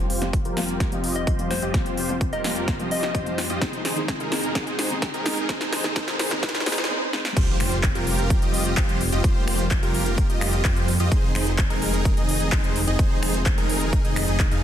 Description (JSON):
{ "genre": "EDM, festival progressive house", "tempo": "128 BPM", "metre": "4/4", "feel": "straight", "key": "F minor", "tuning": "A4 = 439 Hz", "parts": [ { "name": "lush unison pad", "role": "sustained chords", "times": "0.0-14.6 s", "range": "Eb3 to C4", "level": "-32 LUFS", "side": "left 1 dB", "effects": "chorus, sidechain pumping" }, { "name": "dense compressed supersaw", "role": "riff", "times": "0.0-14.6 s", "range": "Eb4 to F5", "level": "-28 LUFS", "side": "right 1 dB", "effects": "sidechain pumping, low-pass filter, ping-pong delay" }, { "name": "wide detuned saw bass", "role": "bass", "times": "0.0-14.6 s", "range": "F1 to F2", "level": "-28 LUFS", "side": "equal", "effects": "chorus, tube saturation, sidechain pumping" }, { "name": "riser and impact", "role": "sound effects", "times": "0.0-9.2 s", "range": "none", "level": "-35 LUFS", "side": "equal", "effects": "none" }, { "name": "big-room dance drum kit", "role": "drums", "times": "0.1-14.6 s", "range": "crash cymbal, finger snaps, handclaps, hi-hat, snare drum", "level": "-28 LUFS", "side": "equal", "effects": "none" }, { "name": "felt-muted upright piano", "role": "accompaniment", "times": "0.2-7.2 s", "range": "Eb3 to F4", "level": "-32 LUFS", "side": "equal", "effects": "sidechain pumping, ping-pong delay" }, { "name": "electronic kick drum", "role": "drums", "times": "0.3-14.5 s", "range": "none", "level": "-23 LUFS", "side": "equal", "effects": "none" }, { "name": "soft struck synth lead", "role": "melody", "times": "1.2-3.3 s", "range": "C5 to Eb5", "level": "-31 LUFS", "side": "left 2 dB", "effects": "chorus, ping-pong delay" } ], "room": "light reverb", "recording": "dense, heavily limited modern master, high-pass filter", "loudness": "-20 LUFS", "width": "side -10 dB against mid", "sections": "0.0-7.4 A section; 7.4-14.6 B section", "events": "build-up 0.0-7.4; drum fill 0.0-6.9, 7.1; filter sweep on supersaw synth 0.0-7.4; filter sweep 0.0-7.4; drop 7.4-14.6; impact 7.4-9.2", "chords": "0.0 Fsus2; 3.6 Ab/F; 7.4 Fsus2; 11.1 Ab/F" }